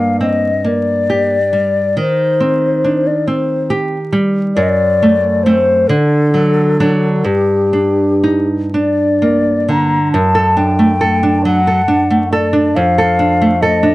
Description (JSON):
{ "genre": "romantic duo for flute and classical guitar", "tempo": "39-48 BPM (dotted quarters)", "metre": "6/8", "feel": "rubato", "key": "unclear", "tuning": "A4 = 443 Hz", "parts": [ { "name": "mellow hollow concert flute", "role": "melody", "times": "0.0-13.9 s", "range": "G4 to Bb5", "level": "-15 LUFS", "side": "left 2 dB", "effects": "slapback echo" }, { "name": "nylon-string guitar", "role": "accompaniment", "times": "0.0-13.9 s", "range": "F2 to A4", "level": "-13 LUFS", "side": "right 1 dB", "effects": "none" } ], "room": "light reverb", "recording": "dry, close 1970s-style studio recording, vinyl crackle", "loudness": "-11 LUFS", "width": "side -18 dB against mid", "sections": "0.0-10.2 A section; 10.2-13.9 B section", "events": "none", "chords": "0.0 Gm; 2.0 Cm/Eb; 4.6 D7/F#; 5.9 D; 7.3 Gm; 10.2 D/F#; 12.8 Dm/F", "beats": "0.66 | 1.99 3.29 | 4.57 5.90 | 7.26 8.75 | 10.15 11.46 | 12.77" }